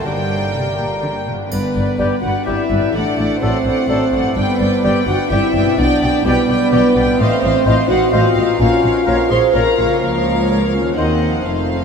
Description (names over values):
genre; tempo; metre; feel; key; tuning
cinematic, playful, whimsical film cue; 127 BPM; 3/4; straight; G major, Bb minor from 7.2 s; A4 = 441 Hz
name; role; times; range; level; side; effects
warm studio violin section; melody; 0.0-11.8 s; D5 to G5; -25 LUFS; left 1 dB; none
warm studio violin section; second line; 0.0-11.8 s; Bb3 to C6; -24 LUFS; left 1 dB; none
dark studio viola section; accompaniment; 0.0-11.8 s; G4 to Eb5; -26 LUFS; left 1 dB; none
mellow bassoon; accompaniment; 0.0-11.1 s; F3 to G3; -29 LUFS; right 4 dB; none
concert harp; arpeggios; 0.0-11.8 s; G2 to Eb5; -28 LUFS; left 4 dB; none
dark studio cello section; bass; 0.0-11.8 s; Db2 to D3; -23 LUFS; equal; none
rich studio double bass section; bass; 0.0-11.8 s; F1 to Eb2; -23 LUFS; equal; none
dark clarinet; second line; 1.5-11.8 s; F3 to Ab4; -25 LUFS; right 3 dB; none
mellow French horn section; sustained chords; 1.5-11.8 s; Bb3 to C5; -17 LUFS; equal; stereo widening
triangle; percussion; 1.5-2.4 s; none; -38 LUFS; right 7 dB; none
hollow concert flute; second line; 2.0-11.1 s; Db5 to Eb5; -28 LUFS; left 2 dB; none
warm oboe; second line; 2.0-11.1 s; G4 to C5; -28 LUFS; left 3 dB; none
room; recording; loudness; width
wet huge ambient reverb, RT60 8.3 s; in a vast, echoing space; -13 LUFS; side -6 dB against mid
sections
0.0-1.5 A section; 1.5-11.8 B section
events
none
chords
0.1 Gm; 1.5 G; 2.9 D7/A; 4.4 G; 5.8 G/B; 7.2 F7/A; 8.6 Bbm; 10.0 Bbm/Db; 11.0 Cdim/Eb